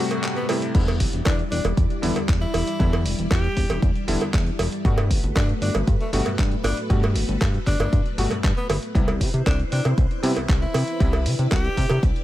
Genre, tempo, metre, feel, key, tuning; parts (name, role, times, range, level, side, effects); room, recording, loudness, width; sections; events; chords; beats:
nu-disco, nu disco; 117 BPM; 4/4; straight; E minor; A4 = 441 Hz
bright electric grand piano; accompaniment; 0.0-11.1 s; B2 to F#4; -27 LUFS; left 1 dB; sidechain pumping, dub echo
string machine, full ensemble; sustained chords; 0.0-12.2 s; G3 to D5; -31 LUFS; left 1 dB; ensemble chorus, vintage 12-bit sampler grit, sidechain pumping
dusty soul sampler-style drum kit; drums; 0.1-12.2 s; crash cymbal, handclaps, hi-hat; -32 LUFS; equal; small room ambience
cowbell; percussion; 0.1-12.0 s; -29 LUFS; right 4 dB
clear tenor saxophone; melody; 0.4-12.0 s; A3 to G4; -31 LUFS; left 1 dB; ping-pong delay
chorused synth bass; bass; 0.7-12.1 s; E1 to C3; -23 LUFS; equal
electronic kick drum; drums; 0.7-12.1 s; -22 LUFS; equal; small room ambience
little or no reverb; -19 LUFS; side -14 dB against mid
0.0-12.2 A section
break 0.0-0.7
0.0 Am7; 0.7 Em7; 4.8 Gmaj9; 9.0 Cmaj7
0.23 | 0.75 1.26 1.77 2.29 | 2.80 3.31 3.82 4.34 | 4.85 5.36 5.88 6.39 | 6.90 7.41 7.93 8.44 | 8.95 9.46 9.98 10.49 | 11.00 11.52 12.03